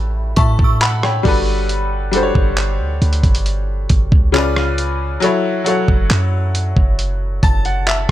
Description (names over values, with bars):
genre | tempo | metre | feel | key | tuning
contemporary R&B | 68 BPM | 4/4 | straight | unclear | A4 = 439 Hz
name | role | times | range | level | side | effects
bright grand piano | accompaniment | 0.0-8.1 s | C#3 to B5 | -19 LUFS | left 2 dB | none
warm 808-style bass | bass | 0.0-8.1 s | F#1 to A2 | -18 LUFS | equal | none
downlifter | sound effects | 0.0-1.7 s | none | -46 LUFS | right 1 dB | none
synth chime | texture | 0.0-8.1 s | B5 to A6 | -28 LUFS | equal | ensemble chorus, phaser, ping-pong delay
dusty soul sampler-style drum kit | drums | 0.4-8.1 s | handclaps, hi-hat, kick drum, rim click | -16 LUFS | equal | vintage 12-bit sampler grit
room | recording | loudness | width
little or no reverb | none | -14 LUFS | side -13 dB against mid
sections
0.0-8.1 A section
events
grand piano fill 7.0-8.1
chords
0.0 A9; 1.3 Gmaj7; 4.3 C#7b9; 5.2 F#m7